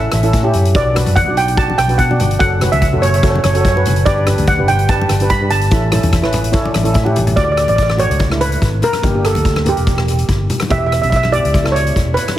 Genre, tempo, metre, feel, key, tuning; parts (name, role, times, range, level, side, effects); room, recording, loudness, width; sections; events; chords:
calypso; 145 BPM; 4/4; straight; D major; A4 = 440 Hz
steel pan; melody; 0.0-12.4 s; G4 to B5; -17 LUFS; right 2 dB; digital delay
steel pan; accompaniment; 0.0-12.4 s; A3 to F#5; -20 LUFS; equal
fingered electric bass; bass; 0.0-12.1 s; E1 to B2; -16 LUFS; equal
street-band drum kit; drums; 0.1-12.4 s; hi-hat, kick drum, rim click; -18 LUFS; equal
congas; percussion; 1.0-12.4 s; -24 LUFS; left 2 dB
light reverb; heavily compressed radio sound, multiband compression; -12 LUFS; side -13 dB against mid
0.0-7.4 A section; 7.4-12.4 B section
steel pan fill 6.1-7.4; drum fill 6.9-7.4; steel pan solo 7.4-12.4
0.0 A; 0.7 Bm; 2.4 F#m; 4.1 G; 5.7 A; 7.4 D; 9.0 Gm; 10.7 Em